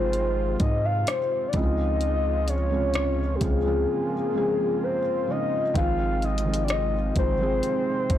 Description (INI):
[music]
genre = contemporary R&B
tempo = 64 BPM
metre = 4/4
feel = straight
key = Ab major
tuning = A4 = 440 Hz
[part]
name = soft octave-layered synth lead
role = melody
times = 0.0-8.2 s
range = G4 to F5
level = -26 LUFS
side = left 3 dB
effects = chorus, phaser
[part]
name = felt-muted upright piano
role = accompaniment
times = 0.0-8.2 s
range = C3 to Ab4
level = -29 LUFS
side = right 3 dB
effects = none
[part]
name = warm analog pad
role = sustained chords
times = 0.0-8.2 s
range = C3 to F4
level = -35 LUFS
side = right 1 dB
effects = chorus
[part]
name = long sustained 808-style bass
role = bass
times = 0.0-8.2 s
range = Ab1 to Ab2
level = -27 LUFS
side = equal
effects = none
[part]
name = smooth R&B drum kit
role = drums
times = 0.1-8.2 s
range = hi-hat, kick drum, rim click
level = -26 LUFS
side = equal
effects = soft clipping on snare
[sound]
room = little or no reverb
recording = blown-out, overdriven recording, overdrive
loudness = -22 LUFS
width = side -11 dB against mid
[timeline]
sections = 0.0-8.2 A section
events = drums muted 3.9-5.8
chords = 0.0 Ab6; 1.5 Dbmaj7; 5.8 Ab6